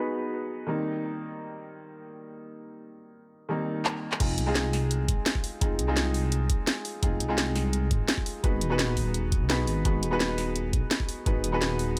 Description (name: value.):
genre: liquid drum and bass.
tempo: 170 BPM.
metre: 4/4.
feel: straight.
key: unclear.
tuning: A4 = 440 Hz.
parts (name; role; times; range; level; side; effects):
clear baby grand piano; accompaniment; 0.0-12.0 s; Eb3 to Cb5; -33 LUFS; equal; digital delay.
drum and bass drum kit; drums; 3.8-12.0 s; crash cymbal, handclaps, hi-hat, snare drum; -32 LUFS; equal; none.
dark detuned saw bass; bass; 4.2-12.0 s; Eb1 to Db2; -31 LUFS; equal; none.
electronic kick drum; drums; 4.2-11.3 s; none; -30 LUFS; equal; none.
room: light reverb.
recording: low-pass filter.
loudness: -28 LUFS.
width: mono.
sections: 0.0-4.2 A section; 4.2-12.0 B section.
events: filter sweep 0.0-4.2; drum fill 3.9-4.2; drop 4.2-12.0.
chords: 0.0 Abm7; 0.7 Cm7; 4.2 Fm7; 8.4 Abm7.